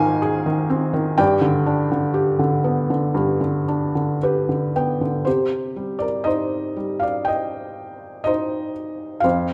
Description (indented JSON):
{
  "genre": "classical, lyrical solo piano",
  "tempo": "54-63 BPM",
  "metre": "4/4",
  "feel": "rubato",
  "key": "C minor from 5.3 s",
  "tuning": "A4 = 441 Hz",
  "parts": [
    { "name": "felt-muted upright piano", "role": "solo", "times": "0.0-9.5 s", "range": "F2 to Ab5", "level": "-21 LUFS", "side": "equal", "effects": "none" }
  ],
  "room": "moderate recital hall reverb, RT60 1.7 s",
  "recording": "none",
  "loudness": "-21 LUFS",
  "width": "mono",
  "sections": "0.0-5.3 A section; 5.3-9.5 B section",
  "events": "felt piano fill 3.7-5.3",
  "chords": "0.0 Ab; 1.2 G; 5.3 Cm7"
}